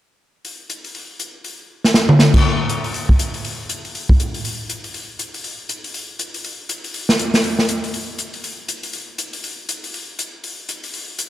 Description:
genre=jazz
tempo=240 BPM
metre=4/4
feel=swing 59% on 8ths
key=none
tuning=none
part: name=swinging big-band drum kit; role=drums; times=0.4-11.3 s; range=crash cymbal, hi-hat, kick drum, snare drum, toms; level=-18 LUFS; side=equal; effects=none
room=light reverb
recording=none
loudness=-18 LUFS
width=side -14 dB against mid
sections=0.5-2.5 A section; 2.5-11.3 B section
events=drum fill 1.7-2.2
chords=none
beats=| 0.45 0.70 0.95 1.20 | 1.45 1.70 1.95 2.20 | 2.45 2.70 2.95 3.20 | 3.45 3.70 3.95 4.20 | 4.45 4.70 4.95 5.20 | 5.45 5.70 5.95 6.20 | 6.45 6.70 6.95 7.20 | 7.45 7.69 7.94 8.19 | 8.44 8.69 8.94 9.19 | 9.44 9.69 9.94 10.19 | 10.44 10.69 10.94 11.19

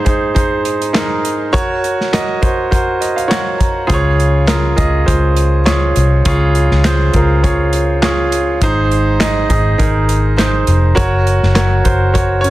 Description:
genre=piano-driven pop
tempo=102 BPM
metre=4/4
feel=swing 56% on 16ths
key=Db major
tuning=A4 = 440 Hz
part: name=clear concert grand piano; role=accompaniment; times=0.0-12.5 s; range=Ab2 to Bb5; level=-15 LUFS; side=right 1 dB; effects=none
part: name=modern studio drum kit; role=drums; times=0.1-12.5 s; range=handclaps, hi-hat, kick drum, snare drum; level=-17 LUFS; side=equal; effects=none
part: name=vintage muted fingered electric bass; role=bass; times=3.9-12.5 s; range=F1 to Db2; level=-14 LUFS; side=equal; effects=none
room=light reverb, small room ambience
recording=dense, heavily limited modern master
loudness=-11 LUFS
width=side -16 dB against mid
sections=0.0-12.5 A section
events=grand piano fill 2.7-3.9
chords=0.0 Ab; 1.5 Gb; 3.9 Db; 8.6 Ab; 11.0 Gb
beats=0.36 0.95 | 1.54 2.13 2.72 3.31 | 3.90 4.49 5.08 5.67 | 6.26 6.85 7.44 8.03 | 8.62 9.21 9.79 10.38 | 10.97 11.56 12.15

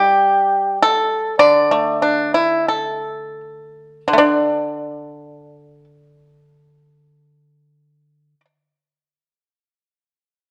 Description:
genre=chinese traditional, Chinese solo plucked strings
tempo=36-59 BPM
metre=2/4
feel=rubato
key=unclear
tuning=A4 = 443 Hz
part: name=pipa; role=solo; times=0.0-8.4 s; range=D3 to D5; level=-17 LUFS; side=equal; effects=none
room=moderate recital hall reverb, RT60 1.3 s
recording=worn, warbling old tape, cassette tape, warbly pitch drift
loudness=-17 LUFS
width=mono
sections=0.0-4.2 A section; 4.2-10.5 B section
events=slowing down 0.0-4.2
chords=none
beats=0.30 | 1.38 2.67 | 4.20 5.83 | 7.41

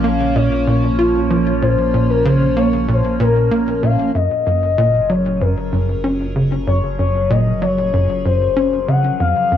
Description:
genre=ambient, sequencer-driven space music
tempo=95 BPM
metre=4/4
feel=straight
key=unclear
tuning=A4 = 440 Hz
part: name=expressive portamento lead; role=melody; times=0.0-9.6 s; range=Bb4 to Gb5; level=-19 LUFS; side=left 6 dB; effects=chorus, cassette tape, ping-pong delay
part: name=evolving wavetable pad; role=sustained chords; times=0.0-9.6 s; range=C3 to Bb4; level=-22 LUFS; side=right 2 dB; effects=phaser, built-in reverb, cassette tape
part: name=tight sequencer bass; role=riff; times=0.0-9.6 s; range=F2 to F4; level=-17 LUFS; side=right 1 dB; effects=lush chorus, cassette tape, ping-pong delay
part: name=warm sub bass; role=bass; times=0.0-9.6 s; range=F1 to Bb1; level=-25 LUFS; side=right 1 dB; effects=none
room=wet studio reverb, RT60 0.5 s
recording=home recording on cassette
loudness=-14 LUFS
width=side -10 dB against mid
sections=0.0-4.1 A section; 4.1-9.6 B section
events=fade-in on ambient pad 4.1-9.6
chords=0.0 Bbm; 4.1 Gbmaj7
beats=0.36 0.99 | 1.62 2.25 2.88 3.51 | 4.15 4.78 5.41 6.04 | 6.67 7.30 7.93 8.57 | 9.20

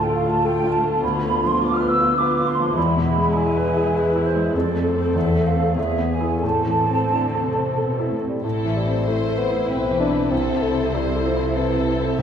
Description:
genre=classical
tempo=87-105 BPM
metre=3/4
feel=rubato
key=A minor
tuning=A4 = 440 Hz
part: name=clear concert grand piano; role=melody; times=0.0-12.2 s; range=C2 to C5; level=-22 LUFS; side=left 1 dB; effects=none
part: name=mellow hollow small flute group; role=second line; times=0.0-7.8 s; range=B4 to F6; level=-23 LUFS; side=right 3 dB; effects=none
part: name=dark studio viola section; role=accompaniment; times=0.0-12.1 s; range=G#3 to A4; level=-27 LUFS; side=equal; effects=none
part: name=warm symphonic cello section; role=bass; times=0.0-12.2 s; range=D2 to D3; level=-29 LUFS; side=right 2 dB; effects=none
part: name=dark bassoon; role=accompaniment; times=8.3-12.2 s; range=E3 to D4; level=-24 LUFS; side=equal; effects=none
part: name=rich studio violin section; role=melody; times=8.4-12.2 s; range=C5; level=-34 LUFS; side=left 8 dB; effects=none
part: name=warm studio violin section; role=second line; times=8.4-12.2 s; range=A4 to C5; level=-29 LUFS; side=left 6 dB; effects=none
part: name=rich studio double bass section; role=bass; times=8.4-12.2 s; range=A1 to C2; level=-30 LUFS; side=right 1 dB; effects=none
room=wet concert hall reverb, RT60 2.1 s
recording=minimal, uncompressed stereo recording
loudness=-18 LUFS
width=side -8 dB against mid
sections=0.0-8.4 A section; 8.4-12.2 B section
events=none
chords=0.0 Dm; 1.0 Bdim/D; 2.8 E; 4.5 F; 5.1 Am/E; 5.8 E; 6.4 Am; 10.3 Am/C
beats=0.44 | 1.02 1.61 2.19 | 2.76 3.36 3.95 | 4.54 5.15 5.77 | 6.43 7.12 7.78 | 8.44 9.07 9.70 | 10.31 10.94 11.57 | 12.19

